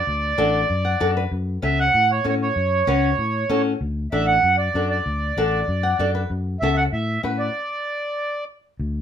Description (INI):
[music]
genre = latin, cumbia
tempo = 193 BPM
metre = 4/4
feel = straight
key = unclear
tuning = A4 = 440 Hz
[part]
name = accordion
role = melody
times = 0.0-8.4 s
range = C#5 to F#5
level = -21 LUFS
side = right 3 dB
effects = none
[part]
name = fingered electric bass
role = bass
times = 0.1-9.0 s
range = A1 to A2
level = -24 LUFS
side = left 1 dB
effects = none
[part]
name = flamenco guitar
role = accompaniment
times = 0.4-7.5 s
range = C#4 to F#5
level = -23 LUFS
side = left 3 dB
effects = none
[sound]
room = light reverb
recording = minimal, uncompressed stereo recording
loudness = -19 LUFS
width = side -9 dB against mid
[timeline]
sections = 0.0-8.8 A section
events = nylon-string guitar fill 0.7-1.3, 5.7-6.3; stop 7.5-8.8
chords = 0.0 D; 1.3 F#m; 3.8 D; 6.3 F#m; 7.5 N.C.